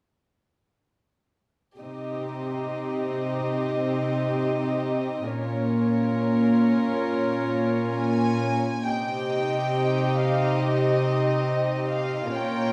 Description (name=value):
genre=cinematic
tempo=69 BPM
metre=4/4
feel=rubato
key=unclear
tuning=A4 = 439 Hz
part: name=warm chamber violin section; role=second line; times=1.8-12.7 s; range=G4 to Eb5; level=-31 LUFS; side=equal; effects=none
part: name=warm chamber viola section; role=accompaniment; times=1.8-12.7 s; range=C4 to F4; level=-32 LUFS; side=equal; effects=none
part: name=rich symphonic cello section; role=bass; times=1.8-12.7 s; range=Bb2 to C3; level=-28 LUFS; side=equal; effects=none
part: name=warm symphonic violin section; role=melody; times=7.9-12.7 s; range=Eb5 to Ab5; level=-33 LUFS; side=equal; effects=none
room=wet scoring stage reverb, RT60 1.5 s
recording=dark, warm production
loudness=-25 LUFS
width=mono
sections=1.8-8.9 A section; 8.9-12.7 B section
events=none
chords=1.8 Cm; 5.3 Bbm; 8.9 Cm